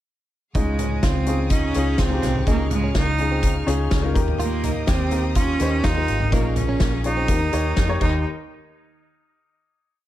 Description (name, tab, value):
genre	piano-driven pop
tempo	125 BPM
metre	4/4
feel	straight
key	unclear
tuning	A4 = 440 Hz
part	warm grand piano	accompaniment	0.5-8.3 s	Eb2 to Db5	-27 LUFS	left 4 dB	none
part	clear studio string section	sustained chords	0.5-8.2 s	Eb3 to F6	-38 LUFS	left 1 dB	none
part	vintage muted fingered electric bass	bass	0.5-8.2 s	Ab1 to F2	-24 LUFS	equal	none
part	loose indie drum kit	drums	0.5-8.1 s	crash cymbal, hi-hat, kick drum, snare drum, toms	-23 LUFS	equal	none
part	bright cello	melody	0.6-8.2 s	Ab3 to Eb4	-25 LUFS	right 3 dB	none
part	direct-recorded clean electric guitar	riff	0.6-8.2 s	Bb3 to G4	-31 LUFS	right 6 dB	none
room	small room ambience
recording	none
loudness	-19 LUFS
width	side -13 dB against mid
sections	0.5-8.3 chorus; 8.3-10.1 final hit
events	none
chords	0.5 Dbadd9; 4.2 Eb; 6.3 Bbm7; 7.3 Eb; 8.3 N.C.